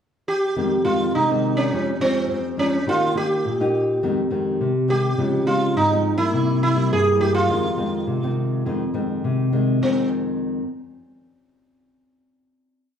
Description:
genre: samba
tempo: 104 BPM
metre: 4/4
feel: straight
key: F minor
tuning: A4 = 436 Hz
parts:
  - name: sitar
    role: melody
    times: 0.3-10.1 s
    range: C4 to Ab4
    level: -21 LUFS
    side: right 1 dB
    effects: none
  - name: nylon-string guitar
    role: accompaniment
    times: 0.6-10.6 s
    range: F2 to G4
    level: -22 LUFS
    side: left 2 dB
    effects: none
room: wet large studio reverb, RT60 1.1 s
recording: band playing live in one room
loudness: -19 LUFS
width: side -8 dB against mid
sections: 0.0-0.6 pickup bar; 0.6-9.8 A section; 9.8-12.1 final chord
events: none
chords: 0.0 N.C.; 0.6 Fm7; 1.7 Db/F; 2.9 Eb; 4.0 Fm7; 5.2 Dbmaj7; 6.3 C7; 7.5 Fm7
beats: | 0.57 1.15 1.72 2.30 | 2.88 3.45 4.03 4.61 | 5.19 5.76 6.34 6.92 | 7.50 8.08 8.66 9.24 | 9.82 10.40

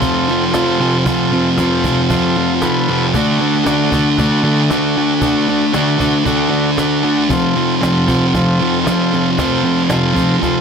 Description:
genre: garage rock duo or trio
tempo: 115 BPM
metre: 4/4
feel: straight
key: unclear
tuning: A4 = 439 Hz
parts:
  - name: combo organ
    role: sustained chords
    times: 0.0-10.6 s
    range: F4 to D5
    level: -20 LUFS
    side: equal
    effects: none
  - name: thick fuzz guitar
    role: riff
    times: 0.0-10.6 s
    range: F2 to D4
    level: -13 LUFS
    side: equal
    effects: distortion
  - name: cajon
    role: drums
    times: 0.0-10.5 s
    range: none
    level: -23 LUFS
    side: equal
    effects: none
room: moderate spring reverb, RT60 1.5 s, digital ambience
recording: none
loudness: -12 LUFS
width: side -6 dB against mid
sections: 0.0-10.6 A section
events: none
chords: 0.0 F; 3.1 D; 7.3 F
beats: 0.02 0.54 | 1.06 1.58 2.10 2.62 | 3.14 3.66 4.18 4.70 | 5.22 5.74 6.26 6.78 | 7.30 7.83 8.35 8.87 | 9.39 9.91 10.43

